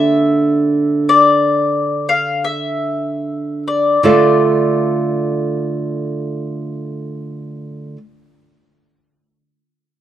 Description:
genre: romantic duo for mandolin and classical guitar.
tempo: 35-52 BPM.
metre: 4/4.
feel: rubato.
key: D minor.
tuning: A4 = 439 Hz.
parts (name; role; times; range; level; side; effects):
mandolin; melody; 0.0-8.0 s; D5 to F5; -16 LUFS; left 4 dB; none.
nylon-string guitar; accompaniment; 0.0-8.0 s; D3 to F5; -16 LUFS; right 3 dB; none.
room: light reverb, small room ambience.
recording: dry, close 1970s-style studio recording.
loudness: -13 LUFS.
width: side -11 dB against mid.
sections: 0.0-4.0 A section; 4.0-9.8 B section.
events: slowing down 0.0-4.0.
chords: 0.0 Gm/D; 4.0 Dm.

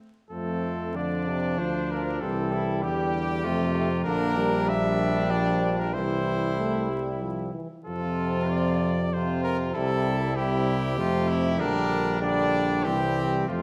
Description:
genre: classical, brass quintet.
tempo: 96 BPM.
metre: 3/4.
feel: straight.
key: F major.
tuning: A4 = 440 Hz.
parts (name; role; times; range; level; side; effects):
warm cornet; melody; 0.3-13.6 s; F4 to E5; -33 LUFS; equal; none.
clear trumpet; second line; 0.3-13.6 s; C4 to G4; -36 LUFS; equal; none.
clear French horn; accompaniment; 0.3-13.6 s; F3 to Bb3; -34 LUFS; equal; none.
warm euphonium; accompaniment; 0.3-13.6 s; C3 to A3; -33 LUFS; equal; none.
clear tuba; bass; 0.3-13.6 s; Bb1 to F2; -31 LUFS; equal; none.
room: wet recital hall reverb, RT60 1.3 s.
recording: vinyl crackle.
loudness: -26 LUFS.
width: mono.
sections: 0.3-13.6 A section.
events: none.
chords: 0.3 F; 2.2 C; 3.4 F; 4.1 Gm/Bb; 5.9 C; 7.9 F; 9.7 C; 11.0 F; 11.6 Gm/Bb; 12.8 C.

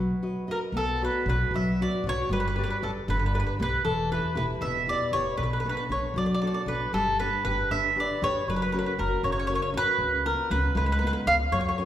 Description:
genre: italian folk, Italian serenade.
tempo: 78 BPM (dotted quarters).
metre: 6/8.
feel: rubato.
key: B minor.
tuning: A4 = 439 Hz.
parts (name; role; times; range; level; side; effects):
mandolin; melody; 0.0-11.8 s; A4 to E#5; -27 LUFS; right 1 dB; none.
nylon-string guitar; accompaniment; 0.0-11.9 s; B2 to D#5; -30 LUFS; left 1 dB; none.
upright bass; bass; 0.0-11.9 s; E1 to F#2; -30 LUFS; equal; none.
room: wet recital hall reverb, RT60 1.6 s.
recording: recorded in a church or concert hall.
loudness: -24 LUFS.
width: side -11 dB against mid.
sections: 0.7-11.9 A section.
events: none.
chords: 0.0 B; 0.7 Bm; 2.3 G; 3.8 Em; 5.4 Bm7; 6.9 G; 8.5 F#; 10.0 C#7.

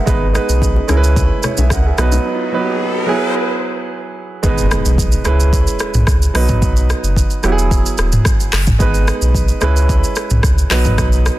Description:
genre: afrobeats.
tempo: 110 BPM.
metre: 4/4.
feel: straight.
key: G# minor.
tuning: A4 = 440 Hz.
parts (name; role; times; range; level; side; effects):
warm grand piano; accompaniment; 0.0-11.4 s; F#3 to F#5; -19 LUFS; right 3 dB; none.
warm sub bass; bass; 0.1-11.3 s; D#1 to C#2; -14 LUFS; equal; none.
afro-pop drum kit; drums; 0.1-11.4 s; handclaps, hi-hat, kick drum, rim click, shaker, toms; -16 LUFS; equal; soft clipping on snare.
congas and bongos; percussion; 0.1-2.2 s; none; -26 LUFS; left 4 dB; none.
riser and impact; sound effects; 1.4-6.6 s; none; -24 LUFS; left 1 dB; none.
room: digital ambience.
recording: dense, heavily limited modern master.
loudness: -12 LUFS.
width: side -15 dB against mid.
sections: 0.0-4.4 A section; 4.4-11.4 B section.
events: riser 1.4-4.4; break 2.3-4.4; impact 4.4-6.6.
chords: 0.1 G#m; 0.9 C#m7; 2.0 B; 3.1 Eadd9; 4.4 G#m; 5.3 C#m7; 6.3 B; 7.4 Eadd9; 8.8 G#m; 9.6 C#m7; 10.7 B.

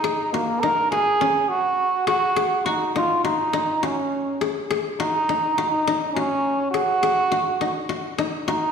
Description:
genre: afrobeat.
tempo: 103 BPM.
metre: 4/4.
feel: straight.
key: unclear.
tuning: A4 = 440 Hz.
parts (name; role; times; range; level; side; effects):
trombone with metal mute; melody; 0.0-8.7 s; Bb3 to Bb4; -21 LUFS; right 2 dB; slapback echo.
koto; arpeggios; 0.0-8.7 s; Db4 to Ab4; -26 LUFS; left 6 dB; slapback echo.
room: moderate lush hall reverb, RT60 2.5 s.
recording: live gig heard through the venue's PA, recital hall reverb.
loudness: -20 LUFS.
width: side -6 dB against mid.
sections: 0.0-8.2 A section.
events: none.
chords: 0.0 Ebm; 1.2 Ab7sus4; 2.4 Ab5.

